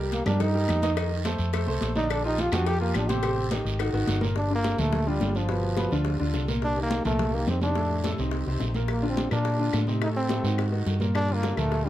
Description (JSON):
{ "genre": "Afro-Cuban jazz", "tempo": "212 BPM", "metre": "4/4", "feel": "straight", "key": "G minor", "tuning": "A4 = 440 Hz", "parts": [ { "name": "bright trombone", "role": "melody", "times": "0.0-11.9 s", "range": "F3 to G4", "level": "-28 LUFS", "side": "equal", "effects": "none" }, { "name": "clear concert grand piano", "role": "accompaniment", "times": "0.0-11.9 s", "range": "A2 to Eb5", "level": "-30 LUFS", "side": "equal", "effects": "none" }, { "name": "hollow-body short-scale fingered electric bass", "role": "bass", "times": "0.0-11.9 s", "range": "G1 to Bb2", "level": "-27 LUFS", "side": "equal", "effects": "none" }, { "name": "congas", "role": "percussion", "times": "0.1-11.9 s", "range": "none", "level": "-34 LUFS", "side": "equal", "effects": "none" }, { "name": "cowbell and bongos", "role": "percussion", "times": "0.1-11.9 s", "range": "none", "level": "-36 LUFS", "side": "left 6 dB", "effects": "none" }, { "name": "guiro", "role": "percussion", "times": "0.1-11.9 s", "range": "none", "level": "-40 LUFS", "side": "right 6 dB", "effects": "none" }, { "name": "claves", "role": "percussion", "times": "0.3-3.9, 8.9-11.7 s", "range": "none", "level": "-39 LUFS", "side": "left 8 dB", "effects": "none" } ], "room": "light reverb", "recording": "none", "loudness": "-23 LUFS", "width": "side -13 dB against mid", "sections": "0.0-4.4 A section; 4.4-11.9 B section", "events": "trombone solo 0.0-4.4", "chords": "0.0 Cm7; 1.0 F6; 2.1 Bb69; 3.2 Am7b5; 3.8 Absus2; 4.4 Gm7; 5.5 G7; 6.6 Cm7; 7.8 F6; 8.9 Bb; 10.0 Adim; 10.6 Ab5; 11.2 Gm7" }